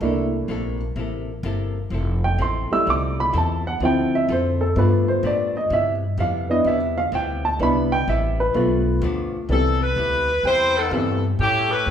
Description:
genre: jazz, big band swing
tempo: 127 BPM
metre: 4/4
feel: swing 66% on 8ths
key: C major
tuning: A4 = 440 Hz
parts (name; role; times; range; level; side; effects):
- archtop guitar, miked and amplified; accompaniment; 0.0-11.9 s; G2 to A4; -31 LUFS; left 4 dB; none
- warm baby grand piano; accompaniment; 0.0-11.2 s; E3 to E6; -21 LUFS; right 1 dB; none
- upright bass; bass; 0.0-11.9 s; F1 to A2; -24 LUFS; equal; none
- warm saxophone section; melody; 9.5-11.9 s; G4 to C5; -20 LUFS; left 1 dB; none
- clear trumpet section; stabs; 10.4-11.9 s; E4 to G5; -27 LUFS; right 1 dB; none
room: wet large studio reverb, RT60 1.2 s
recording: band playing live in one room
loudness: -19 LUFS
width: side -8 dB against mid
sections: 0.0-9.5 A section; 9.5-11.9 B section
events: grand piano solo 0.0-9.5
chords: 0.0 C13; 1.9 Fmaj7; 3.8 Dm7; 4.8 G7; 5.7 Cmaj7; 8.5 G7; 9.5 Cmaj7; 11.4 A7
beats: | 0.02 0.49 0.97 1.44 | 1.91 2.39 2.86 3.33 | 3.81 4.28 4.75 5.23 | 5.70 6.17 6.65 7.12 | 7.59 8.07 8.54 9.02 | 9.49 9.97 10.44 10.92 | 11.39 11.87

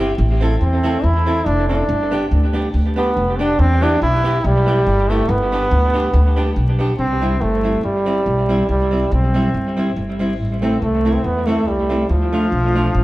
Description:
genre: ska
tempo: 141 BPM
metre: 4/4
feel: straight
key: C major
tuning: A4 = 441 Hz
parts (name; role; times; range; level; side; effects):
- archtop guitar, miked and amplified; accompaniment; 0.0-12.9 s; G3 to A4; -21 LUFS; right 1 dB; analog delay
- upright bass; bass; 0.0-13.0 s; F1 to E2; -18 LUFS; equal; none
- brilliant trombone; melody; 0.6-13.0 s; F3 to E4; -19 LUFS; right 1 dB; none
room: wet stone room reverb, RT60 1.3 s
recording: band playing live in one room, vinyl crackle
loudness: -15 LUFS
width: side -17 dB against mid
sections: 0.0-7.0 A section; 7.0-13.0 B section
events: none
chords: 0.2 Am; 1.9 G; 3.6 Em; 5.3 G; 7.0 C; 10.4 Am; 12.1 Dm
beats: | 0.18 0.61 1.04 1.46 | 1.89 2.31 2.74 3.16 | 3.59 4.01 4.44 4.86 | 5.29 5.71 6.14 6.56 | 6.99 7.41 7.84 8.27 | 8.69 9.12 9.54 9.97 | 10.39 10.82 11.24 11.67 | 12.10 12.52 12.95

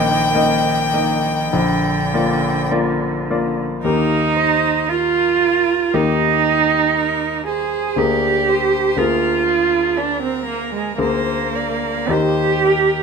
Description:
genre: classical, slow romantic movement for piano trio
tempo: 50-61 BPM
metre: 4/4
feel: rubato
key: Eb major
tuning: A4 = 439 Hz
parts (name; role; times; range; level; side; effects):
- clear violin; melody; 0.0-13.0 s; G4 to G5; -24 LUFS; left 4 dB; none
- rich cello; second line; 0.0-13.0 s; D3 to Ab4; -17 LUFS; right 5 dB; none
- clear concert grand piano; accompaniment; 0.0-13.0 s; Bb1 to Eb5; -20 LUFS; left 3 dB; none
room: moderate large studio reverb, RT60 1.1 s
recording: minimal, uncompressed stereo recording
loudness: -15 LUFS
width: side -5 dB against mid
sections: 0.0-3.8 A section; 3.8-13.0 B section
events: none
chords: 0.0 Eb/Bb; 1.5 Bb; 3.8 Eb; 8.0 Bb7/D; 12.1 Eb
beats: 0.34 1.53 2.71 | 3.85 4.90 5.93 6.96 | 7.98 8.99 9.98 10.99 | 12.10

